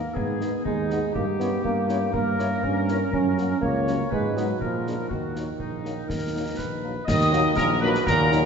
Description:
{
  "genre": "military-style march for wind band",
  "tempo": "121 BPM",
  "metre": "2/4",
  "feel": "straight",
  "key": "Eb minor from 3.1 s",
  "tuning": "A4 = 440 Hz",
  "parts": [
    { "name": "warm euphonium", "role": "second line", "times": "0.0-8.5 s", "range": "Bb2 to Db4", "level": "-27 LUFS", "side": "right 3 dB", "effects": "none" },
    { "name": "warm woodwind section", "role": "second line", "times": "0.0-8.5 s", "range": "D#4 to Eb5", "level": "-31 LUFS", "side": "left 1 dB", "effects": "none" },
    { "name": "mellow tuba", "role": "bass", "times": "0.0-8.5 s", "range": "Bb1 to Bb2", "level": "-27 LUFS", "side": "right 1 dB", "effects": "none" },
    { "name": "concert bass drum, concert snare drum and clash cymbals", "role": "drums", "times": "0.2-8.4 s", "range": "none", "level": "-33 LUFS", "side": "left 1 dB", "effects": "none" },
    { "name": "dark trumpet section", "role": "melody", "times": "0.4-8.5 s", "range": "Bb4 to D#5", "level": "-28 LUFS", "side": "right 1 dB", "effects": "none" },
    { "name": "mellow French horn section", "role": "accompaniment", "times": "0.4-8.4 s", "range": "Gb3 to Gb4", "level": "-33 LUFS", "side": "left 5 dB", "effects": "none" },
    { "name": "bright piccolo", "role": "second line", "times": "7.1-8.5 s", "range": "Bb5 to Eb6", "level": "-27 LUFS", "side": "left 5 dB", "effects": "none" },
    { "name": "warm trombone section", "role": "sustained chords", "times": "7.1-8.5 s", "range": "Gb3 to Bb3", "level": "-32 LUFS", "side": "right 2 dB", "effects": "none" }
  ],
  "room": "wet concert hall reverb, RT60 2.5 s",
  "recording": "nothing above 7.7 kHz",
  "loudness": "-22 LUFS",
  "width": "side -6 dB against mid",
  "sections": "0.0-7.1 A section; 7.1-8.5 B section",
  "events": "none",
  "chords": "0.0 G#m; 1.1 Gdim7; 3.1 Gb; 4.1 Abm; 4.6 Bb7; 5.1 Ebm",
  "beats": "| 0.15 0.65 | 1.14 1.64 | 2.13 2.62 | 3.12 3.62 | 4.11 4.61 | 5.10 5.60 | 6.09 6.59 | 7.08 7.58 | 8.07"
}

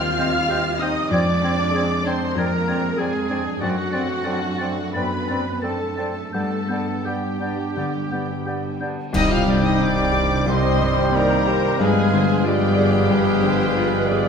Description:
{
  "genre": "classical, romantic movement for piano and orchestra",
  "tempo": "84-98 BPM",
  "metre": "4/4",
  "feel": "rubato",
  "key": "C minor",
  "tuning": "A4 = 441 Hz",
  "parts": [
    { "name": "clear grand piano", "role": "melody", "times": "0.0-14.3 s", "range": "C2 to A4", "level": "-24 LUFS", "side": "left 3 dB", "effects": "none" },
    { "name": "warm symphonic violin section", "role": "melody", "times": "0.0-14.3 s", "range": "F#5 to F6", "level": "-30 LUFS", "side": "left 3 dB", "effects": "none" },
    { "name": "rich symphonic violin section", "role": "second line", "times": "0.0-14.3 s", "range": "F#4 to F5", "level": "-30 LUFS", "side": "left 5 dB", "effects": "none" },
    { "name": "warm oboe", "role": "second line", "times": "0.0-14.3 s", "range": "F#4 to G5", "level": "-30 LUFS", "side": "right 3 dB", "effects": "none" },
    { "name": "dark symphonic viola section", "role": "accompaniment", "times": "0.0-14.3 s", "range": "F#4 to F5", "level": "-29 LUFS", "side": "right 2 dB", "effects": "none" },
    { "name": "mellow French horn section", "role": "sustained chords", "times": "0.0-14.3 s", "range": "G3 to F4", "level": "-29 LUFS", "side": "left 2 dB", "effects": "none" },
    { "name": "rich studio double bass section", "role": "bass", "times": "0.0-14.3 s", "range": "G1 to G2", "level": "-29 LUFS", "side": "right 6 dB", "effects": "none" },
    { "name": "warm symphonic cello section", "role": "bass", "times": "0.0-14.3 s", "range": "G2 to F4", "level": "-31 LUFS", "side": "right 3 dB", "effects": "none" },
    { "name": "mellow clarinet", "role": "second line", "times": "0.2-14.3 s", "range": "B4 to Eb5", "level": "-32 LUFS", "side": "left 3 dB", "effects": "none" },
    { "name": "mellow hollow concert flute", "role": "second line", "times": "0.2-14.3 s", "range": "G4 to A6", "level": "-31 LUFS", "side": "left 2 dB", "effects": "none" },
    { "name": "clear bassoon", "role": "accompaniment", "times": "0.2-14.3 s", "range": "G3 to C4", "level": "-31 LUFS", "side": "right 4 dB", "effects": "none" },
    { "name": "cymbal swell, clash cymbals and concert bass drum", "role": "percussion", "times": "6.3-10.4 s", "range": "none", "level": "-30 LUFS", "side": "right 1 dB", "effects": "none" },
    { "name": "warm trombone section", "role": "sustained chords", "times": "9.1-14.3 s", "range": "Eb3 to C4", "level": "-30 LUFS", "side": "right 4 dB", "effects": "none" },
    { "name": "mellow trumpet", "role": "stabs", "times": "9.1-14.3 s", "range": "G4 to Ab4", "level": "-29 LUFS", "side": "right 2 dB", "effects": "none" },
    { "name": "mellow tuba", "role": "bass", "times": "9.1-14.3 s", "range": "G1 to C2", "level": "-30 LUFS", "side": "right 4 dB", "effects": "none" }
  ],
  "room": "moderate scoring stage reverb, RT60 1.8 s",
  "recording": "none",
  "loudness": "-18 LUFS",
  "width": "side -6 dB against mid",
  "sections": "0.0-9.1 A section; 9.1-14.3 B section",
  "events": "band accent 9.1-9.8",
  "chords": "0.0 Cm/Eb; 1.1 Dm7b5/F; 3.6 D7/F#; 6.3 G; 9.1 Cm; 11.8 G7b9",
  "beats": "0.50 | 1.12 1.75 2.38 3.00 | 3.61 4.25 4.95 5.64 | 6.34 7.05 7.77 8.46 | 9.15 9.81 10.47 11.15 | 11.80 12.45 13.10 13.76"
}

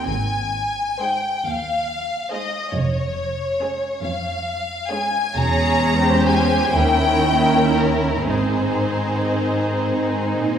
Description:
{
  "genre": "classical, slow romantic movement for string orchestra",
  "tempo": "37-47 BPM (dotted quarters)",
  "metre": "6/8",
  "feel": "rubato",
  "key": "Ab major",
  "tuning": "A4 = 439 Hz",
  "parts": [
    { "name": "warm symphonic violin section", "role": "melody", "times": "0.0-10.6 s", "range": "Bb4 to Bb5", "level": "-22 LUFS", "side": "left 2 dB", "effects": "none" },
    { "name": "warm symphonic viola section", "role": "accompaniment", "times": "0.0-10.6 s", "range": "Eb3 to Eb4", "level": "-24 LUFS", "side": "right 2 dB", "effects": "none" },
    { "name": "clear symphonic double bass section", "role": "bass", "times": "0.1-9.3 s", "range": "Fb1 to Eb2", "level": "-26 LUFS", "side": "right 2 dB", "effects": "none" },
    { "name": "rich symphonic cello section", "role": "bass", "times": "0.1-10.6 s", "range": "Eb2 to Eb4", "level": "-24 LUFS", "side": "right 2 dB", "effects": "none" },
    { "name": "warm symphonic violin section", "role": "second line", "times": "1.0-10.6 s", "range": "Eb4 to Db5", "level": "-24 LUFS", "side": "equal", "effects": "none" }
  ],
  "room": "wet scoring stage reverb, RT60 1.8 s",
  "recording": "recorded in a church or concert hall",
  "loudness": "-18 LUFS",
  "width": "side -8 dB against mid",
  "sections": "0.0-10.6 A section",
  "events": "none",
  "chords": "0.1 Ab; 2.8 Db/F; 5.4 Dbm/Fb; 6.7 Eb7b9; 8.3 Ab",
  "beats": "| 0.07 1.47 | 2.75 4.04 | 5.35 6.74 | 8.27 9.87"
}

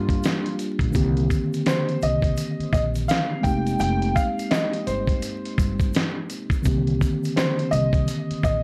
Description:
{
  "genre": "lo-fi hip hop",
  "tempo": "84 BPM",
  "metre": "4/4",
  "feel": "swing 61% on 16ths",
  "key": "C minor",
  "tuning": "A4 = 440 Hz",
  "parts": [
    { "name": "felt-muted upright piano", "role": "melody", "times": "0.0-8.6 s", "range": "F4 to G5", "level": "-30 LUFS", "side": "equal", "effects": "none" },
    { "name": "mellow tine electric piano", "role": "accompaniment", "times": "0.0-8.6 s", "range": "D3 to G4", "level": "-28 LUFS", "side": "equal", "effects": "none" },
    { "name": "upright bass", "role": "bass", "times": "0.0-8.6 s", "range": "F1 to C2", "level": "-29 LUFS", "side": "equal", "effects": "transformer saturation" },
    { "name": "dusty soul sampler-style drum kit", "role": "drums", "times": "0.1-8.6 s", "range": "hi-hat, kick drum, snare drum", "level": "-26 LUFS", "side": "equal", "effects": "vintage 12-bit sampler grit" },
    { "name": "egg shaker", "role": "percussion", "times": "0.2-8.6 s", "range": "none", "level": "-52 LUFS", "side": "equal", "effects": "none" }
  ],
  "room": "little or no reverb",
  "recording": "dry, gritty hardware recording, vinyl crackle",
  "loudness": "-23 LUFS",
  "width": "mono",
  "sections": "0.9-8.6 A section",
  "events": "none",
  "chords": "0.0 Gm7; 0.9 Cm7; 3.4 Fm11; 6.7 Cm7",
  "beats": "0.23 | 0.94 1.65 2.37 3.08 | 3.80 4.51 5.22 5.94 | 6.65 7.37 8.08"
}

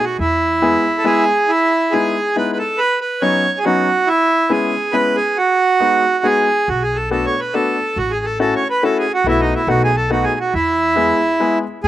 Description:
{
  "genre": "musette waltz",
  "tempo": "139 BPM",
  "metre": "3/4",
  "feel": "straight",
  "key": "E major",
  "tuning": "A4 = 439 Hz",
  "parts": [
    { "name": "accordion", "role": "melody", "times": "0.0-11.9 s", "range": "D#4 to C#5", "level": "-15 LUFS", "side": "right 2 dB", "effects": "none" },
    { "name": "upright bass", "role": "bass", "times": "0.2-0.8, 6.7-11.9 s", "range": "A1 to E2", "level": "-23 LUFS", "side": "equal", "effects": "none" },
    { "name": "bright upright piano", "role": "accompaniment", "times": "0.6-11.6 s", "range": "F#3 to G#4", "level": "-19 LUFS", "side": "left 4 dB", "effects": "slapback echo" }
  ],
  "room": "light reverb",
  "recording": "recorded outdoors, with no room sound",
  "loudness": "-14 LUFS",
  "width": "side -13 dB against mid",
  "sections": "0.0-1.5 A section; 1.5-11.8 A section",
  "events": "none",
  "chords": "0.2 E; 1.5 Emaj7; 2.8 Badd9; 4.1 C#m7; 5.4 G#m7; 6.7 Bm7; 8.0 A6; 9.2 B7sus4; 9.7 B7; 10.5 E",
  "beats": "| 0.18 0.61 1.05 | 1.49 1.93 2.36 | 2.79 3.22 3.65 | 4.08 4.51 4.94 | 5.37 5.80 6.24 | 6.67 7.11 7.54 | 7.97 8.40 8.82 | 9.25 9.67 10.10 | 10.53 10.96 11.39 | 11.83"
}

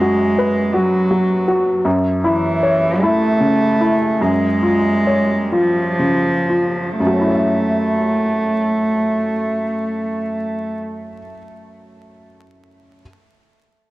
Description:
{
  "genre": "neoclassical piano and strings",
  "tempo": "39-55 BPM (dotted quarters)",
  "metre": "6/8",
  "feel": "rubato",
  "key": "F# minor",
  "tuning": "A4 = 440 Hz",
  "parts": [
    { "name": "warm cello", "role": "second line", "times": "0.0-10.8 s", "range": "E3 to A3", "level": "-18 LUFS", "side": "right 1 dB", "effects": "tape echo" },
    { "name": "clear upright piano", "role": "accompaniment", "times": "0.0-13.0 s", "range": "F#2 to E5", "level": "-18 LUFS", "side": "left 1 dB", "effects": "none" }
  ],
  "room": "light reverb",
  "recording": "dry, gritty hardware recording, vinyl crackle",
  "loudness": "-15 LUFS",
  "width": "side -18 dB against mid",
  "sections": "0.0-7.0 A section; 7.0-10.0 B section",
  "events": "slowing down 0.7-7.0",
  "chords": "0.0 B5/F#; 1.8 A/F#; 4.2 C#/F#; 7.0 F#m7",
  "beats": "0.74 | 1.85 3.01 | 4.20 5.51 | 6.99 8.49"
}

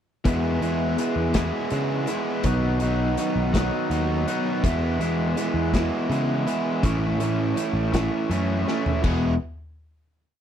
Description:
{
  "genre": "indie rock",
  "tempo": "55 BPM (dotted quarters)",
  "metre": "6/8",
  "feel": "straight",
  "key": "E major",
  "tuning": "A4 = 440 Hz",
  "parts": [
    { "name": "overdriven electric guitar", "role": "riff", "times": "0.2-9.3 s", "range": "D#3 to G#4", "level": "-26 LUFS", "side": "right 7 dB", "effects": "lush chorus" },
    { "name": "raw garage guitar", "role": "riff", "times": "0.2-9.3 s", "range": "E2 to G#4", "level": "-27 LUFS", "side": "left 6 dB", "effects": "overdrive" },
    { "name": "picked electric bass", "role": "bass", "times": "0.3-9.4 s", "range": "E1 to C#3", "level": "-25 LUFS", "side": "equal", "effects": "none" },
    { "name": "loose indie drum kit", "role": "drums", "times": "0.3-9.2 s", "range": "crash cymbal, hi-hat, kick drum, snare drum, toms", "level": "-28 LUFS", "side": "left 1 dB", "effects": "none" }
  ],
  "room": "little or no reverb",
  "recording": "none",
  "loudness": "-21 LUFS",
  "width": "side -9 dB against mid",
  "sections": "0.2-9.0 verse; 9.0-10.4 final chord",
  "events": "drum fill 8.7-9.0",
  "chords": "0.2 E; 2.4 B; 4.6 E; 6.8 A; 9.0 E",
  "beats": "| 0.24 1.34 | 2.44 3.54 | 4.64 5.74 | 6.83 7.93 | 9.03"
}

